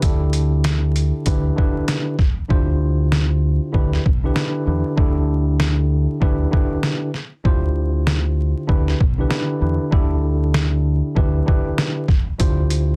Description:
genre	hip hop, boom-bap hip-hop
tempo	97 BPM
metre	4/4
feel	swing 62% on 16ths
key	D dorian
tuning	A4 = 440 Hz
part	mellow tine electric piano	accompaniment	0.0-13.0 s	D3 to C5	-25 LUFS	equal	cassette tape, high-pass filter, low-pass filter
part	deep dub fingered electric bass	bass	0.0-13.0 s	B1 to E2	-21 LUFS	equal	none
part	trip hop sampler-style drum kit	drums	0.0-12.9 s	hi-hat, kick drum, snare drum	-21 LUFS	equal	none
room	little or no reverb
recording	dense, heavily limited modern master, vinyl crackle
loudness	-19 LUFS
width	mono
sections	0.0-13.0 A section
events	hi-hats muted 2.5-12.4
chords	0.0 Dsus24; 1.3 G6/D; 2.5 Dm11; 3.7 Em7; 5.0 Dsus24; 6.2 G6/D; 7.5 Dm11; 8.7 Em7; 9.9 Dsus24; 11.2 G6/D; 12.4 Dm11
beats	| 0.03 0.65 1.26 1.88 | 2.50 3.12 3.74 4.36 | 4.98 5.59 6.21 6.83 | 7.45 8.07 8.69 9.31 | 9.93 10.54 11.16 11.78 | 12.40

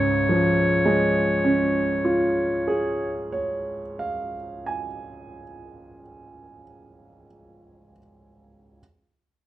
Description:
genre	classical, romantic duo for clarinet and grand piano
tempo	31 BPM (dotted quarters)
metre	12/8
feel	rubato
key	Db major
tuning	A4 = 440 Hz
part	warm clarinet	melody	0.0-3.3 s	Db5	-24 LUFS	left 2 dB	none
part	warm grand piano	accompaniment	0.0-8.8 s	Db2 to Ab5	-24 LUFS	right 2 dB	none
room	moderate large studio reverb, RT60 0.8 s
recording	dark, warm production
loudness	-21 LUFS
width	side -14 dB against mid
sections	0.0-6.5 A section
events	none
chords	0.0 Db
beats	0.67 2.61 4.56

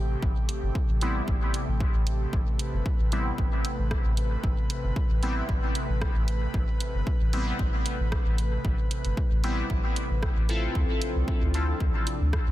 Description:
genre	dub techno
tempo	114 BPM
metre	4/4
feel	straight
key	A minor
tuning	A4 = 440 Hz
part	airy breathy pad	sustained chords	0.0-12.5 s	C3 to B4	-36 LUFS	equal	chorus, sidechain pumping
part	soft dub sub bass	bass	0.0-12.5 s	G1 to D2	-27 LUFS	equal	sidechain pumping
part	electronic kick drum	drums	0.2-12.4 s	none	-28 LUFS	equal	none
part	punchy analog drum machine	drums	0.5-12.4 s	hi-hat, rim click	-38 LUFS	right 2 dB	soft clipping on snare, dub echo
part	resonant sweep polysynth	stabs	1.0-11.7 s	G3 to A4	-33 LUFS	left 1 dB	chorus, phaser, cassette tape, sidechain pumping, dub echo
room	digital ambience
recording	dense, heavily limited modern master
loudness	-24 LUFS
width	side -15 dB against mid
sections	0.0-12.5 A section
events	none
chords	0.0 Am7; 10.8 Dm7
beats	| 0.23 0.75 1.28 1.80 | 2.33 2.86 3.38 3.91 | 4.44 4.96 5.49 6.01 | 6.54 7.07 7.59 8.12 | 8.65 9.17 9.70 10.22 | 10.75 11.28 11.80 12.33

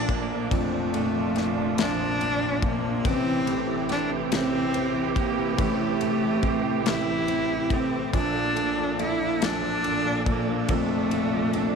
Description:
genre	six-eight pop ballad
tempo	47 BPM (dotted quarters)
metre	6/8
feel	straight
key	unclear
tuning	A4 = 441 Hz
part	rich cello	melody	0.0-11.8 s	A3 to E4	-27 LUFS	equal	tape echo
part	warm concert grand piano	accompaniment	0.0-11.8 s	F1 to F3	-30 LUFS	left 11 dB	none
part	warm symphonic string section	sustained chords	0.0-11.8 s	Bb2 to A4	-30 LUFS	right 11 dB	none
part	fingerpicked steel-string acoustic guitar	arpeggios	0.0-11.8 s	E3 to D4	-31 LUFS	right 13 dB	none
part	modern studio drum kit	drums	0.1-11.7 s	kick drum, ride cymbal, snare drum	-30 LUFS	left 2 dB	none
room	light reverb, small room ambience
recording	1960s-style stereo with parts hard left and right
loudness	-22 LUFS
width	side -6 dB against mid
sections	0.0-11.8 A section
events	none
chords	0.0 Bbmaj7; 3.0 Am7; 8.1 Bbmaj7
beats	| 0.51 1.78 | 3.05 4.32 | 5.59 6.86 | 8.14 9.42 | 10.69

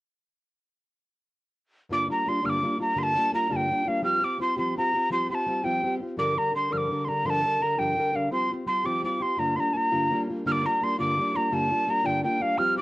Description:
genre	celtic folk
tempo	112 BPM (dotted quarters)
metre	6/8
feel	straight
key	G minor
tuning	A4 = 435 Hz
part	breathy mellow mid whistle	melody	1.9-12.8 s	F5 to F6	-25 LUFS	equal	cassette tape
part	fingerpicked plugged-in steel-string acoustic guitar	accompaniment	1.9-12.8 s	G2 to Bb4	-28 LUFS	left 1 dB	none
room	moderate studio ambience, RT60 0.5 s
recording	home recording on cassette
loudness	-23 LUFS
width	side -18 dB against mid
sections	1.9-10.5 A section; 10.5-12.8 A section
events	none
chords	1.9 Gm7; 4.0 Fsus2; 6.2 Gm7; 8.3 Fsus2; 9.4 Gm7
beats	| 1.91 2.44 | 2.97 3.51 | 4.04 4.58 | 5.11 5.64 | 6.18 6.71 | 7.25 7.78 | 8.32 8.85 | 9.39 9.92 | 10.45 10.99 | 11.52 12.05 | 12.59

